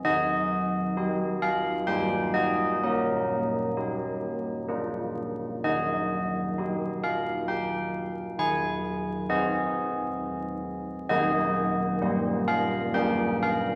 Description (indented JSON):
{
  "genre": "classical, tune for church bells",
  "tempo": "65 BPM",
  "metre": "3/4",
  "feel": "straight",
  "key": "Eb major",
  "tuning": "A4 = 440 Hz",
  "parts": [
    { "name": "old church bells", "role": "solo", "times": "0.0-13.8 s", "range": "Eb3 to Ab5", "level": "-28 LUFS", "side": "equal", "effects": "none" }
  ],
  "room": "wet church reverb, RT60 2.8 s",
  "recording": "heard from further back in the room, vinyl crackle",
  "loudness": "-28 LUFS",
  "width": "mono",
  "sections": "0.0-13.8 A section",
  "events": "none",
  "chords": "0.1 Eb; 1.9 Eb/G; 2.8 Eb/Bb; 4.7 Bb; 5.6 Eb; 8.4 Ab/Eb; 11.1 Eb; 12.0 Eb/G; 12.9 Bb7",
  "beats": "| 0.06 0.97 1.89 | 2.82 3.75 4.69 | 5.63 6.57 7.48 | 8.38 9.28 10.19 | 11.09 12.01 12.95"
}